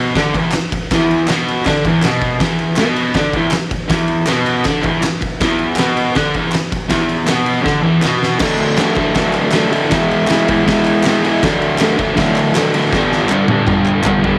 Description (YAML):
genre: garage rock duo or trio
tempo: 160 BPM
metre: 4/4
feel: straight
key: unclear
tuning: A4 = 440 Hz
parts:
  - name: crunchy overdriven guitar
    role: riff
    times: 0.0-14.4 s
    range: E2 to E4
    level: -16 LUFS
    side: equal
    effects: none
  - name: oversized low-tuned drum kit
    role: drums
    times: 0.2-14.3 s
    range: crash cymbal, kick drum, ride cymbal, snare drum, toms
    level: -21 LUFS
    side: equal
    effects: none
  - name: group handclap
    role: percussion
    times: 0.5-14.1 s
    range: none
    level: -29 LUFS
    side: equal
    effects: none
room: light reverb, small room ambience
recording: none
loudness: -15 LUFS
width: mono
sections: 0.0-8.4 A section; 8.4-14.4 B section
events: drum fill 7.7-8.4, 12.9-14.4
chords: 0.0 E5; 8.4 D; 9.9 E; 11.4 D; 12.9 G